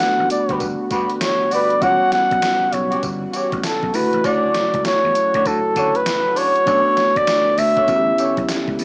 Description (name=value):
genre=R&B, new jack swing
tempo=99 BPM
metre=4/4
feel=swing 63% on 16ths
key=E dorian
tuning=A4 = 440 Hz
part: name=trumpet with bucket mute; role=melody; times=0.0-8.5 s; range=A4 to F#5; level=-20 LUFS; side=equal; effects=cassette tape
part: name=bell-like tine electric piano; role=accompaniment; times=0.0-8.8 s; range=C#3 to G4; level=-27 LUFS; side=equal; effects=cassette tape
part: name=chorused pulse-width pad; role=sustained chords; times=0.0-8.8 s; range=C#3 to F#4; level=-34 LUFS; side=equal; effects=none
part: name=gated 80s digital drum machine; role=drums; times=0.0-8.8 s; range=hi-hat, kick drum, snare drum, tambourine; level=-30 LUFS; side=equal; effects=gated reverb, gated reverb snare, overdrive, cassette tape
part: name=vintage slap bass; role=bass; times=0.2-8.8 s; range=E1 to D3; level=-30 LUFS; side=equal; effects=tube saturation
part: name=mellow horn section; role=stabs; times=0.5-8.4 s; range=B3 to C#5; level=-28 LUFS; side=equal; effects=cassette tape
room=digital ambience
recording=home recording on cassette, small speaker sound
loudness=-18 LUFS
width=mono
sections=0.0-8.8 A section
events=none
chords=0.0 Gmaj7; 1.8 Em69; 3.9 Dmaj7; 6.7 Bm9; 7.9 A7